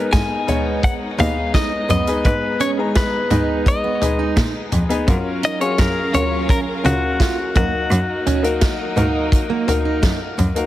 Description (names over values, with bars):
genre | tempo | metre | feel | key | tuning
piano-driven pop | 85 BPM | 4/4 | straight | unclear | A4 = 438 Hz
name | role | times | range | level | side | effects
direct-recorded clean electric guitar | melody | 0.0-10.0 s | F#4 to G#5 | -22 LUFS | left 2 dB | none
clear upright piano | accompaniment | 0.0-10.7 s | G#2 to A#5 | -23 LUFS | left 3 dB | none
warm studio string section | sustained chords | 0.0-10.7 s | F#3 to E#5 | -29 LUFS | right 1 dB | none
warm cello | bass | 0.1-10.5 s | D#2 to C#3 | -20 LUFS | equal | none
natural country drum kit | drums | 0.1-10.7 s | hi-hat, kick drum, snare drum, toms | -20 LUFS | equal | none
fingerpicked plugged-in steel-string acoustic guitar | riff | 0.5-10.2 s | A#3 to E#4 | -25 LUFS | right 8 dB | none
room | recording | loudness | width
light reverb, studio reverb | heavily compressed radio sound, multiband compression | -16 LUFS | side -14 dB against mid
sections
0.0-10.7 A section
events
none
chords
0.0 G#m; 5.1 F#maj7; 7.6 D#m/F#